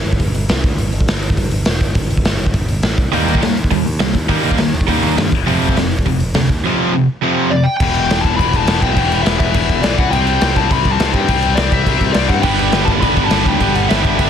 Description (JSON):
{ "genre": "punk rock", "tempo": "206 BPM", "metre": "4/4", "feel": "straight", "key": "unclear", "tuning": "A4 = 440 Hz", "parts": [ { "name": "modern bright picked electric bass", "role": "bass", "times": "0.0-14.3 s", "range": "E1 to G2", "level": "-19 LUFS", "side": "equal", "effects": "none" }, { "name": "raw garage drum kit", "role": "drums", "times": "0.1-14.3 s", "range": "crash cymbal, hi-hat, kick drum, snare drum", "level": "-17 LUFS", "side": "equal", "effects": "none" }, { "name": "cranked stack guitar", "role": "riff", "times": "3.1-7.6, 12.4-14.3 s", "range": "F2 to B4", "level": "-18 LUFS", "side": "right 12 dB", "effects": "overdrive" }, { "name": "tight distorted guitar", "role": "riff", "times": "3.1-14.3 s", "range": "E2 to Eb4", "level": "-18 LUFS", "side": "left 14 dB", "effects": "distortion" }, { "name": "bluesy overdriven lead guitar", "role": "melody", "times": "7.5-14.3 s", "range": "D5 to B5", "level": "-19 LUFS", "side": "left 2 dB", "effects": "distortion" } ], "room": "little or no reverb", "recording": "dense, heavily limited modern master", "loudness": "-13 LUFS", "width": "side -8 dB against mid", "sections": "0.0-7.8 A section; 7.8-14.3 B section", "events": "none", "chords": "0.5 N.C.; 3.1 Eb; 5.3 F5; 7.8 Em; 10.0 C5; 12.5 G", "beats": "0.20 0.49 | 0.78 1.08 1.37 1.66 | 1.96 2.25 2.54 2.84 | 3.13 3.42 3.71 4.01 | 4.30 4.59 4.88 5.18 | 5.47 5.76 6.05 6.35 | 6.64 6.93 7.22 7.51 | 7.80 8.10 8.39 8.68 | 8.97 9.26 9.55 9.84 | 10.13 10.42 10.71 11.00 | 11.29 11.58 11.87 12.16 | 12.45 12.74 13.04 13.32 | 13.62 13.91 14.20" }